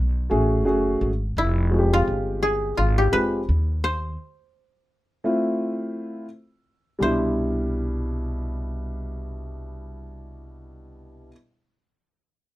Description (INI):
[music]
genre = hip hop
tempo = 85 BPM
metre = 4/4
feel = swing 58% on 16ths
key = C major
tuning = A4 = 440 Hz
[part]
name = koto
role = melody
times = 0.0-11.3 s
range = E4 to C5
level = -24 LUFS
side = left 1 dB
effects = none
[part]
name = upright bass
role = bass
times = 0.0-11.3 s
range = F1 to Eb2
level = -25 LUFS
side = equal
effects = none
[part]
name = dark upright piano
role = accompaniment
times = 0.3-11.3 s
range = B2 to Ab4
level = -24 LUFS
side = equal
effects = none
[sound]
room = light reverb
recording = rough home demo mix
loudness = -21 LUFS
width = side -16 dB against mid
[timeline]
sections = 0.0-7.0 A section; 7.0-9.8 B section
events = break 4.2-7.0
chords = 0.0 Asus2; 0.7 F#madd9; 1.4 Fmadd9; 4.2 Am; 7.0 Cmaj9